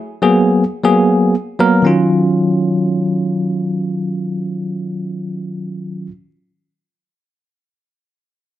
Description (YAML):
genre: jazz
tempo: free time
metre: none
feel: none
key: Eb minor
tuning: A4 = 440 Hz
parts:
  - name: bell-like tine electric piano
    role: accompaniment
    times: 0.2-6.1 s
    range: Eb3 to Bb4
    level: -14 LUFS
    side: equal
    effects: medium stereo tremolo
room: moderate large studio reverb, RT60 0.9 s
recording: dark, warm production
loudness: -13 LUFS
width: side -13 dB against mid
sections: 0.0-1.8 A section; 1.8-5.9 B section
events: none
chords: 0.0 Abm9; 1.8 Ebm9